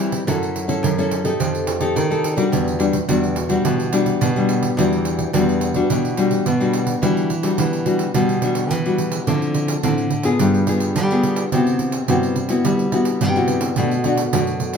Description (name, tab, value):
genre	samba and choro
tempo	107 BPM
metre	4/4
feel	straight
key	E minor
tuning	A4 = 439 Hz
part	nylon-string guitar	accompaniment	0.0-14.8 s	F#2 to A4	-19 LUFS	left 3 dB	none
part	nylon-string guitar	bass	0.0-14.8 s	E2 to G3	-23 LUFS	right 1 dB	none
part	pandeiro	percussion	0.1-14.8 s	none	-24 LUFS	right 6 dB	none
room	moderate large studio reverb, RT60 0.8 s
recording	band playing live in one room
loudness	-17 LUFS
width	side -6 dB against mid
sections	0.0-7.0 A section; 7.0-14.8 A section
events	none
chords	0.3 F#m7; 1.4 F9; 2.5 Em9; 9.3 Dm9; 10.4 G7b9; 11.5 Cmaj7#11; 13.8 Bm7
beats	| 0.27 0.84 1.40 1.96 | 2.52 3.09 3.65 4.21 | 4.78 5.34 5.90 6.46 | 7.03 7.59 8.15 8.71 | 9.27 9.84 10.40 10.96 | 11.52 12.08 12.64 13.21 | 13.77 14.33